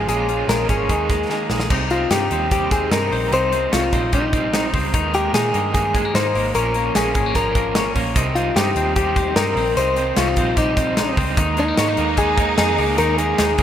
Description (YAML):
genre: jangly indie pop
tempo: 149 BPM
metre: 4/4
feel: straight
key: unclear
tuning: A4 = 440 Hz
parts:
  - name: direct-recorded clean electric guitar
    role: melody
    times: 0.0-13.6 s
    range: Eb4 to C5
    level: -21 LUFS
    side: left 2 dB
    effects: ping-pong delay
  - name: clear studio violin section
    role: second line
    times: 0.0-1.7, 8.2-13.6 s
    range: C4 to F4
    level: -29 LUFS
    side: right 2 dB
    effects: none
  - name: crunchy overdriven guitar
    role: accompaniment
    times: 0.0-13.6 s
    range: Bb2 to Eb4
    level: -25 LUFS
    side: right 7 dB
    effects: tremolo
  - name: twelve-string electric guitar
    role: arpeggios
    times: 0.0-13.6 s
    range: Bb2 to Eb4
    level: -25 LUFS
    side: left 5 dB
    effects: spring reverb
  - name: vintage muted picked electric bass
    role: bass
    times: 0.0-13.6 s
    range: Ab1 to Bb2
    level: -25 LUFS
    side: right 1 dB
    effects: none
  - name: modern studio drum kit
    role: drums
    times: 0.1-13.6 s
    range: crash cymbal, hi-hat, kick drum, snare drum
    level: -23 LUFS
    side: equal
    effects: none
room: moderate lush hall reverb, RT60 2.2 s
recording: rough home demo mix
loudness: -16 LUFS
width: side -10 dB against mid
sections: 0.0-1.7 A section; 1.7-13.6 B section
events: drum fill 1.3-1.7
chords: 0.1 Bbm7; 0.9 Ebsus4; 1.7 Cm; 4.9 Ebsus4; 6.6 Bbm; 8.2 Cm; 11.4 Ebsus4